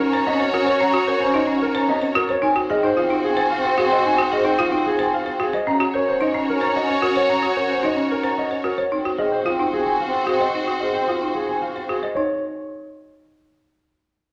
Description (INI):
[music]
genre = classical, minimalist pattern music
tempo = 111 BPM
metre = 3/4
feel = straight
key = unclear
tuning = A4 = 440 Hz
[part]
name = warm concert grand piano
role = melody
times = 0.0-12.4 s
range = Ab4 to Bb5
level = -25 LUFS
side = equal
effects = none
[part]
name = alto flute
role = second line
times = 0.0-11.9 s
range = C4 to Db4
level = -28 LUFS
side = equal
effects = none
[part]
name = warm symphonic violin section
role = sustained chords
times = 0.0-12.0 s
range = Gb4 to Db5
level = -27 LUFS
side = equal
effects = none
[part]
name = folk marimba with hard mallets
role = arpeggios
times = 0.0-12.4 s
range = C4 to C5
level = -26 LUFS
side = equal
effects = none
[sound]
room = wet large studio reverb, RT60 1.4 s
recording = none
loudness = -20 LUFS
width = mono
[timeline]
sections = 0.0-12.2 A section; 12.2-13.8 B section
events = none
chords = 0.0 Ebm7; 2.4 Ab7; 5.7 Ebm7; 8.9 Ab7; 12.2 N.C.